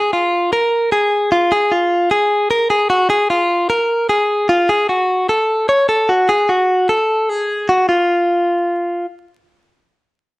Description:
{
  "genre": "indie pop",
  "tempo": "150 BPM",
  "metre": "4/4",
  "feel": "straight",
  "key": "unclear",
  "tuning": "A4 = 439 Hz",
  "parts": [
    { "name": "direct-recorded clean electric guitar", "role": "solo", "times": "0.0-9.1 s", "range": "F4 to Db5", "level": "-13 LUFS", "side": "equal", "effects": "spring reverb" }
  ],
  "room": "light reverb",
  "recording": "dry, close 1970s-style studio recording, vinyl crackle",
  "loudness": "-13 LUFS",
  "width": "side -21 dB against mid",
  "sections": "0.0-4.7 A section; 4.7-7.9 B section; 7.9-10.4 C section",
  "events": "none",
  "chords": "none",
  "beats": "0.33 0.72 1.12 | 1.51 1.91 2.31 2.71 | 3.10 3.50 3.90 4.29 | 4.69 5.09 5.49 5.89 | 6.29 6.69 7.09 7.49 | 7.89 8.29 8.70"
}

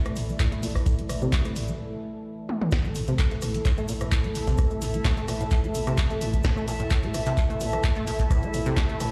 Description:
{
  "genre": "acid house",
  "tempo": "129 BPM",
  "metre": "4/4",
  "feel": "straight",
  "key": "unclear",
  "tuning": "A4 = 438 Hz",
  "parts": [
    { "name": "warm analog pad", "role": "sustained chords", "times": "0.0-9.1 s", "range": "E3 to A4", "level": "-37 LUFS", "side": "equal", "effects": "chorus, vintage 12-bit sampler grit, sidechain pumping" },
    { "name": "warbly tape-like pad", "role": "texture", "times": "0.0-9.1 s", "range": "E4 to A5", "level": "-37 LUFS", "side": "equal", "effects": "chorus, built-in reverb, phaser, sidechain pumping" },
    { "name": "deep acid bass", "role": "riff", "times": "0.1-9.1 s", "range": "A2 to A3", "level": "-32 LUFS", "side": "equal", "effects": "ensemble chorus, vintage 12-bit sampler grit, sidechain pumping, tape echo" },
    { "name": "punchy analog drum machine", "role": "drums", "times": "0.1-9.1 s", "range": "handclaps, hi-hat, rim click, snare drum, toms", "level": "-36 LUFS", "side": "equal", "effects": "none" },
    { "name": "cabasa", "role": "percussion", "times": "0.1-9.1 s", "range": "none", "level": "-48 LUFS", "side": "equal", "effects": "none" },
    { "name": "warm soul drum kit", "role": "drums", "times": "0.2-9.1 s", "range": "hi-hat, shaker, snare drum", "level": "-50 LUFS", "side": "equal", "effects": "none" },
    { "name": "electronic kick drum", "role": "drums", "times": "0.4-8.9 s", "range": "none", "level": "-28 LUFS", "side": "equal", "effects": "none" }
  ],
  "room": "light reverb, small room ambience",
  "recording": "played on a big sound system in a bare room, large studio reverb",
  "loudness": "-26 LUFS",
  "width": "mono",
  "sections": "0.0-2.7 A section; 2.7-9.1 B section",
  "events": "break 1.8-2.7; drum fill 2.5; drop 2.7-9.1",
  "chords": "0.0 A5",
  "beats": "0.40 | 0.86 1.33 1.79 2.26 | 2.72 3.19 3.65 4.12 | 4.58 5.05 5.51 5.98 | 6.44 6.91 7.37 7.84 | 8.30 8.77"
}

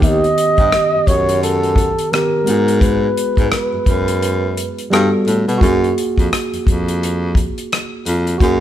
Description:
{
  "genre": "R&B, neo-soul",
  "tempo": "86 BPM",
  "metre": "4/4",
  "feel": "swing 60% on 16ths",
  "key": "F# major",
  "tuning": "A4 = 440 Hz",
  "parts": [
    { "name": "breathy flugelhorn", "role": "melody", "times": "0.0-4.9 s", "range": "A4 to D#5", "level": "-17 LUFS", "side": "right 1 dB", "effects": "none" },
    { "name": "tine electric piano", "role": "accompaniment", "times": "0.0-8.6 s", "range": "D#3 to A4", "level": "-19 LUFS", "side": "right 1 dB", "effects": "overdrive" },
    { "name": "warm baritone saxophone", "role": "bass", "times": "0.0-8.6 s", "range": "D#2 to B2", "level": "-19 LUFS", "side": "left 1 dB", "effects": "none" },
    { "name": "warm soul drum kit", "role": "drums", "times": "0.0-8.6 s", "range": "hi-hat, kick drum, rim click", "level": "-17 LUFS", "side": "left 1 dB", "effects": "none" }
  ],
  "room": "light reverb",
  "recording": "band playing live in one room",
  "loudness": "-13 LUFS",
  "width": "side -11 dB against mid",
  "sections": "0.0-8.6 A section",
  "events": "none",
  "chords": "0.0 D#7alt; 2.5 G#m7; 4.9 Gmaj9; 5.6 F#maj9",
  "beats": "| 0.03 0.72 1.42 2.12 | 2.82 3.51 4.21 4.91 | 5.61 6.30 7.00 7.70 | 8.40"
}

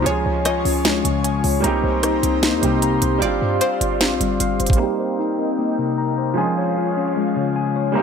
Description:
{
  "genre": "hip hop, trap",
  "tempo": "152 BPM",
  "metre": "4/4",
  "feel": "half-time",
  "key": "C minor",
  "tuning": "A4 = 442 Hz",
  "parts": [
    { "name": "felt-muted upright piano", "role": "accompaniment", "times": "0.0-8.0 s", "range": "F3 to Ab4", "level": "-24 LUFS", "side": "right 6 dB", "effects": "low-pass filter" },
    { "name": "airy breathy pad", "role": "sustained chords", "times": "0.0-8.0 s", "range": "Ab3 to Db6", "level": "-27 LUFS", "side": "right 1 dB", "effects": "chorus, low-pass filter" },
    { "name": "mellow tine electric piano", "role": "arpeggios", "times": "0.0-8.0 s", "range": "C3 to Bb5", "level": "-21 LUFS", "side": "left 7 dB", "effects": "wide subtle chorus, low-pass filter, ping-pong delay" },
    { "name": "short 808-style bass", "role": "bass", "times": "0.0-4.8 s", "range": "G1 to G2", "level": "-24 LUFS", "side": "right 1 dB", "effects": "none" },
    { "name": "string-like resonator pluck", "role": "second line", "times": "0.1-4.8 s", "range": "C5 to Eb5", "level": "-28 LUFS", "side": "equal", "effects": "chorus, ping-pong delay" },
    { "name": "trap drum kit", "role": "drums", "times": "0.1-4.8 s", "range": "hi-hat, kick drum, rim click, snare drum", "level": "-21 LUFS", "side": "right 1 dB", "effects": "none" }
  ],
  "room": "light reverb, digital ambience",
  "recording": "none",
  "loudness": "-17 LUFS",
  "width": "side -6 dB against mid",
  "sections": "0.0-4.8 A section; 4.8-8.0 B section",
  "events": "drum fill 4.4-4.8; filter sweep 4.8-8.0",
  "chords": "0.1 Db; 1.6 Cm7; 3.2 G7sus4; 4.8 Cm7; 6.4 Db",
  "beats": "| 0.06 0.46 0.85 1.25 | 1.64 2.03 2.43 2.82 | 3.22 3.61 4.01 4.40 | 4.80 5.19 5.59 5.98 | 6.38 6.77 7.17 7.56 | 7.96"
}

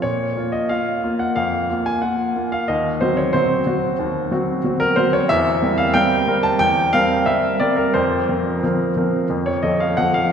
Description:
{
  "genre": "classical-period piano sonatina",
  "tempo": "91 BPM",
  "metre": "4/4",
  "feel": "rubato",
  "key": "Bb minor",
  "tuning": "A4 = 440 Hz",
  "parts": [
    { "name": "clear baby grand piano", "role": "solo", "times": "0.0-10.3 s", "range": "Eb2 to A5", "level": "-17 LUFS", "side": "equal", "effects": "none" }
  ],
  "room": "wet church reverb, RT60 3.1 s",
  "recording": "recorded in a church or concert hall",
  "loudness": "-17 LUFS",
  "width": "side -7 dB against mid",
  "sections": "0.0-10.3 A section",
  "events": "none",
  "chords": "0.0 Bb5; 2.7 Cdim/Eb; 5.3 C7/E; 7.9 Fsus4; 9.3 F",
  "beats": "| 0.03 0.70 1.37 2.03 | 2.69 3.34 3.99 4.64 | 5.29 5.95 6.60 7.26 | 7.94 8.62 9.29 9.97"
}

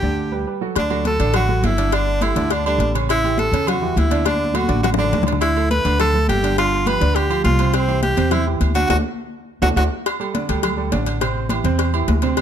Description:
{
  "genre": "latin, salsa",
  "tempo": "207 BPM",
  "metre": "4/4",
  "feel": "straight",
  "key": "unclear",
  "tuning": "A4 = 439 Hz",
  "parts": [
    { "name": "clear tenor saxophone", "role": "melody", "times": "0.0-9.8 s", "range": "C4 to B4", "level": "-21 LUFS", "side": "equal", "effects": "none" },
    { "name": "clear concert grand piano", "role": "accompaniment", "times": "0.0-12.4 s", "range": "C3 to D5", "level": "-24 LUFS", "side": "right 7 dB", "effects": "none" },
    { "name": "upright bass", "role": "bass", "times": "0.0-12.4 s", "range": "G1 to E2", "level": "-20 LUFS", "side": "left 1 dB", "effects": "none" },
    { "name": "bongos and cowbell", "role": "percussion", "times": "0.0-12.4 s", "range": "none", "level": "-27 LUFS", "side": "left 12 dB", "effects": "none" },
    { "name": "congas", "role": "percussion", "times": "0.0-12.4 s", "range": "none", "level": "-28 LUFS", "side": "left 2 dB", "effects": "none" },
    { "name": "agogo bells and timbales", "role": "percussion", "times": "0.8-12.4 s", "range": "none", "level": "-28 LUFS", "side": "right 8 dB", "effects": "none" }
  ],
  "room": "light reverb",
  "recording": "close, detailed microphones",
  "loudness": "-16 LUFS",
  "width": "side -9 dB against mid",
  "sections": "0.8-10.1 A section; 10.1-12.4 B section",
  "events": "break 0.2-0.8; drum fill 4.3-5.4, 9.6-10.1; band accent 8.9-10.1",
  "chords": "0.0 G; 0.8 D; 1.9 Gsus2; 3.1 A7; 4.3 D; 5.4 Dsus2; 6.6 G7; 7.7 C; 8.9 D; 10.1 Gsus2; 11.2 Am7",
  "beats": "0.17 0.47 | 0.76 1.05 1.34 1.64 | 1.93 2.22 2.51 2.80 | 3.09 3.38 3.67 3.96 | 4.25 4.54 4.84 5.13 | 5.42 5.71 6.00 6.29 | 6.58 6.87 7.16 7.45 | 7.74 8.03 8.32 8.61 | 8.90 9.19 9.48 9.77 | 10.06 10.35 10.64 10.93 | 11.21 11.50 11.79 12.08 | 12.37"
}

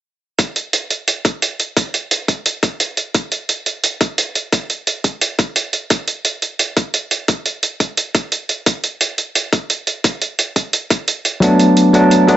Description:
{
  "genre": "liquid drum and bass",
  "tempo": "174 BPM",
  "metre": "4/4",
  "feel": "straight",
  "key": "unclear",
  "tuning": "A4 = 439 Hz",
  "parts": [
    { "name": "electronic hi-hat", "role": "drums", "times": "0.4-12.4 s", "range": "none", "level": "-18 LUFS", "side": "right 3 dB", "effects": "none" },
    { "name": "electronic kick drum", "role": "drums", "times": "0.4-12.4 s", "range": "none", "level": "-17 LUFS", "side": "left 1 dB", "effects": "high-pass filter on kick, high-pass filter on room" },
    { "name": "barky tine electric piano", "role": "accompaniment", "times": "11.4-12.4 s", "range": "F#3 to D4", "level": "-8 LUFS", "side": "equal", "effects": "analog delay" }
  ],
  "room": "moderate plate reverb, RT60 1.1 s",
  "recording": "dreamy mix soaked in reverb, nothing above 7.9 kHz",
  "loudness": "-15 LUFS",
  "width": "side -12 dB against mid",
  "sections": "0.4-12.4 A section",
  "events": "kick drops out 11.1-11.4",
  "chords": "0.4 N.C.; 11.4 Bm7/F#",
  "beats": "| 0.39 0.73 1.08 1.42 | 1.77 2.11 2.46 2.80 | 3.15 3.49 3.84 4.18 | 4.53 4.87 5.22 5.56 | 5.91 6.25 6.59 6.94 | 7.29 7.63 7.97 8.32 | 8.66 9.01 9.35 9.70 | 10.04 10.39 10.73 11.08 | 11.42 11.77 12.11"
}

